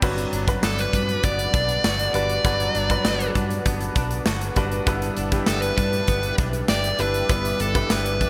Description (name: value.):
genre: 1980s-style pop.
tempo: 99 BPM.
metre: 4/4.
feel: straight.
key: G major.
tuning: A4 = 440 Hz.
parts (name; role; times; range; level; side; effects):
clear concert grand piano; accompaniment; 0.0-8.3 s; G2 to B4; -31 LUFS; equal; none.
ethereal airy pad; sustained chords; 0.0-8.3 s; B4 to D6; -36 LUFS; equal; ensemble chorus, built-in reverb.
direct-recorded clean electric guitar; riff; 0.0-8.3 s; F#3 to G4; -35 LUFS; equal; lush chorus, digital delay.
vintage muted fingered electric bass; bass; 0.0-8.3 s; G1 to G2; -30 LUFS; equal; none.
big rock drum kit; drums; 0.0-8.3 s; crash cymbal, hi-hat, kick drum, snare drum, tambourine; -27 LUFS; equal; none.
tube shaker; percussion; 0.0-8.3 s; none; -45 LUFS; equal; none.
dark smooth lead guitar; melody; 0.6-8.3 s; A4 to D5; -27 LUFS; equal; overdrive.
room: light reverb, small room ambience.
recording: bright 1980s-style digital production.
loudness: -22 LUFS.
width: mono.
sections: 0.0-8.3 A section.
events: none.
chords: 0.0 Gmaj7; 4.9 Em7/G.